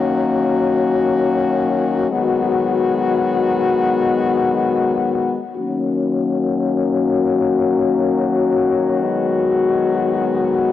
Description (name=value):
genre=hip hop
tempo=free time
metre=none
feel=none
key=Eb minor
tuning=A4 = 438 Hz
part: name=warm French horn section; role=solo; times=0.0-10.7 s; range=Eb3 to Gb4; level=-15 LUFS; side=left 4 dB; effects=low-pass filter, cassette tape, tape echo
room=light reverb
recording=home recording on cassette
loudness=-15 LUFS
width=side -12 dB against mid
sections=0.0-5.6 A section; 5.6-10.7 B section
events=filter sweep on French horn section 5.6-10.7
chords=0.0 Ebm7; 2.1 Abm7; 5.6 Ebm7; 9.0 Abm7